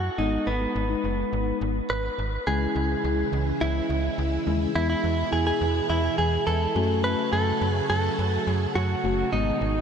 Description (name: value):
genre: pop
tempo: 105 BPM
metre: 4/4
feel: straight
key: C# minor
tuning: A4 = 439 Hz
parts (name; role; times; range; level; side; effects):
- direct-recorded clean electric guitar; melody; 0.0-9.8 s; B3 to B4; -26 LUFS; right 2 dB; ping-pong delay
- slap-like FM bass; bass; 0.0-9.8 s; F#1 to F#2; -27 LUFS; right 1 dB; none
- mellow tine electric piano; accompaniment; 0.2-9.8 s; G#3 to F#4; -31 LUFS; left 7 dB; analog chorus
- string machine, violins; sustained chords; 2.5-9.8 s; B2 to F#4; -30 LUFS; right 1 dB; phaser, ensemble chorus
room: moderate huge ambient reverb, RT60 8.7 s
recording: dreamy mix soaked in reverb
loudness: -23 LUFS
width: side -7 dB against mid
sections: 0.0-2.5 A section; 2.5-9.8 B section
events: none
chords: 0.2 G#m; 2.5 C#m; 4.8 E; 6.8 F#m